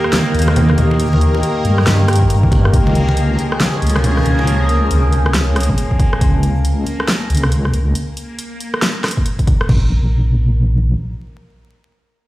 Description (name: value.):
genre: deep dubstep.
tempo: 138 BPM.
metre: 4/4.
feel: swing 62% on 16ths, half-time.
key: unclear.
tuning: A4 = 440 Hz.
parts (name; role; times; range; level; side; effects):
overtone-sweeping drone; sustained chords; 0.0-6.2 s; Eb3 to Ab4; -20 LUFS; equal; chorus, built-in reverb, phaser.
deep house drum kit; drums; 0.0-9.7 s; hi-hat, rim click, snare drum; -20 LUFS; equal; small room ambience.
backwards swelling texture; texture; 0.0-8.0 s; Bb3 to Bb4; -25 LUFS; left 1 dB; built-in reverb.
congas; percussion; 0.1-4.5 s; none; -21 LUFS; equal; dub echo.
deep soft wobble bass; bass; 0.3-11.0 s; Bb1 to G2; -14 LUFS; equal; chorus.
deep house drum kit; drums; 2.2-2.8, 5.7-6.3, 9.2-9.8 s; crash cymbal, kick drum, toms; -15 LUFS; equal; small room ambience.
room: light reverb.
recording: played on a big sound system in a bare room, large studio reverb, vinyl crackle.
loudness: -12 LUFS.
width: side -17 dB against mid.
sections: 0.0-9.7 A section; 9.7-12.3 B section.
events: drop 0.0-9.7.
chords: 0.0 Eb; 2.7 Db; 9.7 N.C..